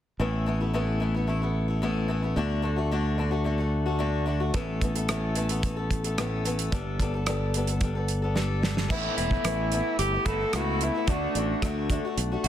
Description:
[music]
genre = folk rock and heartland rock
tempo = 110 BPM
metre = 4/4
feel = straight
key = unclear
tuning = A4 = 439 Hz
[part]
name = picked swing-style acoustic guitar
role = accompaniment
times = 0.2-12.5 s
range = A2 to A4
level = -30 LUFS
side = left 3 dB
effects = none
[part]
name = modern bright fingered electric bass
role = bass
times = 0.2-12.5 s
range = E1 to D2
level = -28 LUFS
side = equal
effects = none
[part]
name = damped 70s drum kit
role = drums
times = 4.5-12.5 s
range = crash cymbal, hi-hat, kick drum, rim click, snare drum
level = -29 LUFS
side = right 1 dB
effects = soft clipping on snare
[part]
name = warm tenor saxophone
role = melody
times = 8.9-11.6 s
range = D4 to A4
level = -29 LUFS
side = left 1 dB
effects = none
[part]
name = electric guitar through a small old amp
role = riff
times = 8.9-12.5 s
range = A2 to F#4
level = -33 LUFS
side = right 2 dB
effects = wide subtle chorus
[sound]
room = light reverb, studio reverb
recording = dense, heavily limited modern master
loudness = -24 LUFS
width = side -11 dB against mid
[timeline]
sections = 0.2-8.9 A section; 8.9-12.5 B section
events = drum fill 8.4-8.9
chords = 0.2 Asus2; 2.4 D; 4.5 Asus2; 6.7 Gadd9; 8.9 Asus2; 11.1 D

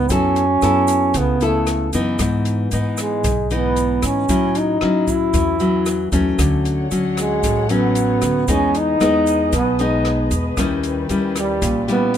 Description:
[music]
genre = bossa nova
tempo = 114 BPM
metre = 4/4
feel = straight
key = unclear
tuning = A4 = 440 Hz
[part]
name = warm trombone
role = melody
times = 0.0-12.2 s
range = G3 to E4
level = -18 LUFS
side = right 2 dB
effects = none
[part]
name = nylon-string guitar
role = accompaniment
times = 0.0-12.2 s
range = G#2 to A4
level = -20 LUFS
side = left 2 dB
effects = none
[part]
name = upright bass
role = bass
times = 0.0-12.2 s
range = A1 to A2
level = -24 LUFS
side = right 1 dB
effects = none
[part]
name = open jazz drum kit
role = drums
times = 0.1-12.2 s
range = hi-hat, kick drum, rim click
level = -27 LUFS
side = equal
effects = none
[part]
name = tube shaker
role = percussion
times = 0.1-12.2 s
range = none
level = -32 LUFS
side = right 8 dB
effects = none
[part]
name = muted studio string section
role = sustained chords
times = 6.4-12.2 s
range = C#4 to F#5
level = -30 LUFS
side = left 1 dB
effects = none
[sound]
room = light reverb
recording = minimal, uncompressed stereo recording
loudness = -16 LUFS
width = side -9 dB against mid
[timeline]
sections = 0.0-12.2 A section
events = none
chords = 0.1 F#m7; 2.2 Emaj7/G#; 4.3 A6; 6.4 Dmaj7; 8.5 Emaj7; 10.6 D#7b9

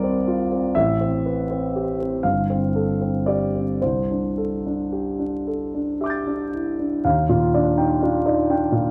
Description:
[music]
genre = classical, impressionist solo piano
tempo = 36-43 BPM (dotted quarters)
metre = 6/8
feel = rubato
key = C major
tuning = A4 = 440 Hz
[part]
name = warm concert grand piano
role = solo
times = 0.0-8.9 s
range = G1 to A6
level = -22 LUFS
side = equal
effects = none
[sound]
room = moderate recital hall reverb, RT60 1.4 s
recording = vinyl crackle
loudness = -22 LUFS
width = mono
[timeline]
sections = 0.0-7.0 A section; 7.0-8.9 B section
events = none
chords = 0.0 C9sus4; 0.7 Am9; 2.2 G9sus4; 3.8 C69; 7.0 Ebmaj9

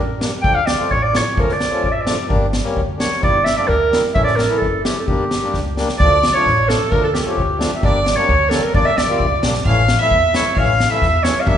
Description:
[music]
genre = klezmer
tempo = 130 BPM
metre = 2/4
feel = straight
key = G dorian sharp4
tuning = A4 = 440 Hz
[part]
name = warm clarinet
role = melody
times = 0.0-11.6 s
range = G4 to G5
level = -17 LUFS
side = equal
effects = none
[part]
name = accordion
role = accompaniment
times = 0.0-11.6 s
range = E3 to F4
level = -24 LUFS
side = left 3 dB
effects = none
[part]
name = upright bass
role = bass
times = 0.0-11.6 s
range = F#1 to E2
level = -22 LUFS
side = equal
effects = none
[part]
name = street-band drum kit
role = drums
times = 0.2-11.6 s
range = kick drum, snare drum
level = -20 LUFS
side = equal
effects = none
[part]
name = warm violin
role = second line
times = 6.0-11.6 s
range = G4 to F5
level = -23 LUFS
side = right 4 dB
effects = none
[sound]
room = wet recital hall reverb, RT60 1.7 s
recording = recorded in a church or concert hall, nothing above 10.7 kHz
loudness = -14 LUFS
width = side -9 dB against mid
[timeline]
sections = 0.0-6.0 A section; 6.0-11.6 B section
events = speeding up 0.0-11.6; drum fill 5.5-6.0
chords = 0.4 Dm; 2.3 Gm; 4.2 A; 5.1 Gm; 6.0 Dm; 7.8 Gm; 9.7 A

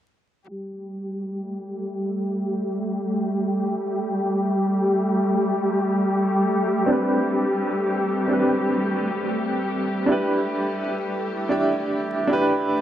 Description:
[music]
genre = trip hop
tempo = 75 BPM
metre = 4/4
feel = straight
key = unclear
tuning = A4 = 440 Hz
[part]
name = rich symphonic string section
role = sustained chords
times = 0.5-12.5 s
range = G3 to G4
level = -24 LUFS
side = equal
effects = none
[part]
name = backwards swelling texture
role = texture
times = 1.5-12.5 s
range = A3 to A4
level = -30 LUFS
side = left 1 dB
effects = built-in reverb
[part]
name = clear upright piano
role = accompaniment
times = 6.9-12.8 s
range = C4 to E5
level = -22 LUFS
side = right 1 dB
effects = tremolo, tape echo
[sound]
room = light reverb, studio reverb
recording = dark, warm production, vinyl crackle, low-pass filter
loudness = -21 LUFS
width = side -11 dB against mid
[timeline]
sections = 0.5-12.8 A section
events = filter sweep 0.5-12.8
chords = 0.5 Gsus2; 6.9 Am11; 10.1 Em7

